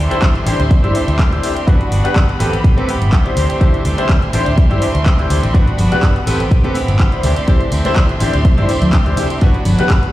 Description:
filtered disco house; 124 BPM; 4/4; swing 54% on 16ths; D mixolydian; A4 = 440 Hz
rich studio violin section; sustained chords; 0.0-10.1 s; G3 to C6; -26 LUFS; right 1 dB; sidechain pumping, low-pass filter
direct-recorded clean electric guitar; riff; 0.0-10.1 s; E3 to G4; -24 LUFS; equal; sidechain pumping, low-pass filter
vintage muted fingered electric bass; bass; 0.0-10.0 s; G1 to A2; -17 LUFS; equal; sidechain pumping, low-pass filter
bright grand piano; accompaniment; 0.1-9.9 s; C4 to C5; -20 LUFS; left 1 dB; phaser, sidechain pumping, low-pass filter
punchy analog drum machine; drums; 0.1-10.1 s; handclaps, hi-hat; -25 LUFS; equal; sidechain pumping on hats, sidechain pumping on cymbals
electronic kick drum; drums; 0.2-10.0 s; -12 LUFS; equal
tambourine and congas; percussion; 5.6-10.0 s; -22 LUFS; right 1 dB; sidechain pumping on perc, low-pass filter on perc
light reverb, studio reverb; played on a big sound system in a bare room, stone room reverb; -12 LUFS; side -15 dB against mid
0.0-10.1 A section
0.0 D9sus4; 1.7 Gmaj7; 2.4 Am9; 3.4 D9sus4; 5.5 Gmaj7; 6.3 Am9; 7.2 D9sus4; 9.4 Gmaj7
0.23 0.71 1.19 | 1.68 2.16 2.64 3.13 | 3.61 4.09 4.58 5.06 | 5.55 6.03 6.51 7.00 | 7.48 7.97 8.45 8.93 | 9.42 9.90

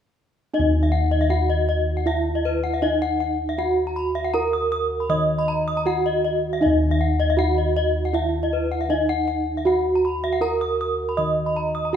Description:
Balinese gamelan; 79 BPM; 4/4; straight; Eb pelog; A4 = 440 Hz
gamelan-type bronze metallophone; melody; 0.5-12.0 s; Eb4 to Eb5; -24 LUFS; right 5 dB
gamelan-type bronze metallophone; arpeggios; 0.5-11.9 s; Cb5 to Eb6; -24 LUFS; left 4 dB
gamelan-type bossed gongs; bass; 0.5-12.0 s; Eb2 to Gb4; -23 LUFS; left 1 dB
moderate recital hall reverb, RT60 1.7 s; minimal, uncompressed stereo recording; -19 LUFS; side -8 dB against mid
0.5-12.0 A section
| 0.54 1.30 2.06 2.82 | 3.58 4.34 5.10 5.86 | 6.62 7.38 8.14 8.90 | 9.66 10.42 11.18 11.94

